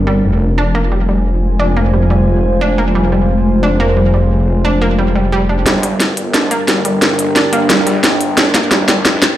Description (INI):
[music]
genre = dark technical drum and bass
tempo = 177 BPM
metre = 4/4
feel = straight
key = G phrygian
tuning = A4 = 439 Hz
[part]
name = dark analog pad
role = sustained chords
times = 0.0-9.4 s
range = G3 to C5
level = -19 LUFS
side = left 1 dB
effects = chorus
[part]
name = snarling distorted saw bass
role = bass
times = 0.0-9.2 s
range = F1 to Bb1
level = -15 LUFS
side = equal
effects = overdrive, high-pass filter
[part]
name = deep dark ambient pad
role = texture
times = 0.0-9.4 s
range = D4 to Ab5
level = -22 LUFS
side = right 1 dB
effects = chorus, built-in reverb
[part]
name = analog pluck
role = arpeggios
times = 0.1-9.0 s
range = G3 to D4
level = -18 LUFS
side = right 2 dB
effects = chorus, digital delay
[part]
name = drum and bass drum kit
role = drums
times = 2.1-2.2, 4.8-9.3 s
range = hi-hat, shaker, snare drum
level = -13 LUFS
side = equal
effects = low-pass filter on hats, low-pass filter on snare, low-pass filter on perc
[sound]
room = light reverb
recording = played on a big sound system in a bare room, large studio reverb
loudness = -11 LUFS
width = side -13 dB against mid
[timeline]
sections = 0.0-5.7 A section; 5.7-9.4 B section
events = filter sweep on synth arpeggio sound 0.0-5.7; build-up 5.7-9.4; drum fill 5.7-9.4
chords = 0.2 Fm; 5.7 Gm